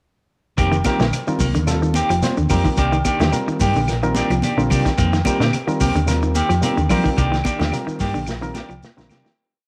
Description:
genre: afrobeat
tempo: 109 BPM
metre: 4/4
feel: swing 55% on 16ths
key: unclear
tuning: A4 = 444 Hz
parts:
  - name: clean electric guitar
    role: stabs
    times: 0.6-9.3 s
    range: Eb3 to G4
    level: -25 LUFS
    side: equal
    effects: subtle chorus
  - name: hollow-body short-scale fingered electric bass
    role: bass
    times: 0.6-9.2 s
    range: F1 to F3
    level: -24 LUFS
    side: equal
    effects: none
  - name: crunchy breakbeat drum kit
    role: drums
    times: 0.6-9.4 s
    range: hi-hat, kick drum, snare drum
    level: -27 LUFS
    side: equal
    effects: none
  - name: congas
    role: percussion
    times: 0.6-9.2 s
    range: none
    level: -30 LUFS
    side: equal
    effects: none
  - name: shekere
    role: percussion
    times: 0.6-9.4 s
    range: none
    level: -33 LUFS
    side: equal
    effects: none
  - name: semi-hollow electric guitar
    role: arpeggios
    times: 0.7-9.3 s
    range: D3 to F3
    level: -27 LUFS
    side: equal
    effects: none
  - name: claves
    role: percussion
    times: 0.8-9.2 s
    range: none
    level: -35 LUFS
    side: equal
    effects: none
  - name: barky reed electric piano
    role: accompaniment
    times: 0.9-9.3 s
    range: G3 to C5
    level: -28 LUFS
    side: equal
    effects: overdrive
room: wet spring reverb, RT60 1.7 s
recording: none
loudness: -19 LUFS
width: mono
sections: 0.6-9.4 groove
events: fade-out 7.2-9.4; drum fill 8.3-9.4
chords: 0.6 F9sus4; 2.8 Cm9; 5.0 F9sus4; 7.2 Cm9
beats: | 0.58 1.13 1.68 2.23 | 2.78 3.33 3.88 4.43 | 4.98 5.53 6.08 6.63 | 7.18 7.73 8.28 8.82

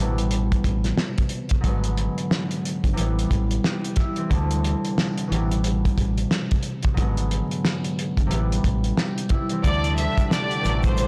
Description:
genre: hip hop, boom-bap hip-hop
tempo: 90 BPM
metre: 4/4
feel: swing 61% on 16ths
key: A dorian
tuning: A4 = 440 Hz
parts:
  - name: concert harp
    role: accompaniment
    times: 0.0-11.1 s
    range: D2 to G4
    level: -28 LUFS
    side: equal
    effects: high-pass filter, low-pass filter
  - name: deep dub fingered electric bass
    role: bass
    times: 0.0-11.1 s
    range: G1 to D2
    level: -26 LUFS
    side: equal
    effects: transformer saturation
  - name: cloth-damped thuddy drum kit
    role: drums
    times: 0.2-11.1 s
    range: hi-hat, kick drum, snare drum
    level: -26 LUFS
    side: equal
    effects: none
  - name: warm analog pad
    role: sustained chords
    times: 10.0-11.1 s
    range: D3 to G4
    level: -37 LUFS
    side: equal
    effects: chorus, high-pass filter, low-pass filter
  - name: egg shaker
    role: percussion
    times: 9.6-11.1 s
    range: none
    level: -51 LUFS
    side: equal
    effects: none
  - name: bright symphonic violin section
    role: melody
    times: 9.7-11.1 s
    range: C5 to E5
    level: -28 LUFS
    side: equal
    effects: high-pass filter, low-pass filter
room: light reverb, studio reverb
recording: blown-out, overdriven recording, vinyl crackle, overdrive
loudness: -23 LUFS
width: mono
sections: 0.0-9.6 A section; 9.6-11.1 B section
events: none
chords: 0.0 Am7; 1.6 Bm6; 3.0 Am7; 4.3 D7sus4; 5.3 Am7; 7.0 Bm6; 8.3 Am7; 9.6 D7sus4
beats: 0.31 0.97 | 1.64 2.31 2.97 3.64 | 4.31 4.97 5.64 6.31 | 6.97 7.64 8.31 8.97 | 9.64 10.31 10.97

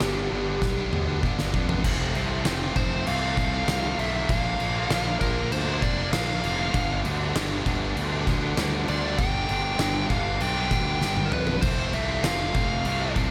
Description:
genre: quiet-loud alternative rock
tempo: 98 BPM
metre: 4/4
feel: straight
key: G mixolydian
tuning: A4 = 441 Hz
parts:
  - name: nasal lead guitar with a parked wah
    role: melody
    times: 0.0-13.1 s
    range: G4 to G5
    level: -32 LUFS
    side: equal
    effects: overdrive, digital delay
  - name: distorted electric guitar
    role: riff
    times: 0.0-13.3 s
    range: F2 to D4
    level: -32 LUFS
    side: equal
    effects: overdrive
  - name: fuzz fingered electric bass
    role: bass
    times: 0.0-13.3 s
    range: F1 to F2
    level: -32 LUFS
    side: equal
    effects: overdrive
  - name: oversized low-tuned drum kit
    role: drums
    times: 0.0-13.3 s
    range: crash cymbal, kick drum, snare drum, toms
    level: -30 LUFS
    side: equal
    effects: none
room: light reverb, small room reverb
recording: none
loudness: -25 LUFS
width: mono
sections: 0.0-1.8 A section; 1.8-13.3 B section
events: drum fill 0.6-1.8, 11.0-11.6; lead electric guitar solo 1.8-13.3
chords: 0.0 G7; 1.8 F; 4.3 Bb; 6.7 G; 11.6 F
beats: 0.01 0.62 1.23 | 1.84 2.45 3.07 3.68 | 4.29 4.90 5.51 6.13 | 6.74 7.35 7.96 8.57 | 9.19 9.80 10.41 11.02 | 11.63 12.25 12.86

